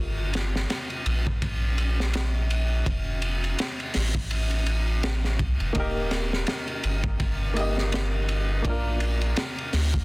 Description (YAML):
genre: trip hop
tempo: 83 BPM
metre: 4/4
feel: swing 58% on 16ths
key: G minor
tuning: A4 = 439 Hz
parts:
  - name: soft dub sub bass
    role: bass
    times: 0.0-10.0 s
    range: Eb1 to D2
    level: -26 LUFS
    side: equal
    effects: none
  - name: crunchy breakbeat drum kit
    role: drums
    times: 0.3-10.0 s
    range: hi-hat, kick drum, ride cymbal, snare drum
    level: -28 LUFS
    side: equal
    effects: none
  - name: clear upright piano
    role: accompaniment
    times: 5.7-10.0 s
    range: Bb3 to Eb5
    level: -31 LUFS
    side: equal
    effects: harmonic tremolo, tape echo
room: small room ambience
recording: dense, heavily limited modern master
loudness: -24 LUFS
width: side -27 dB against mid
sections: 0.0-10.0 A section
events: none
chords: 0.0 Gm; 2.9 F; 5.8 Eb; 8.6 Bb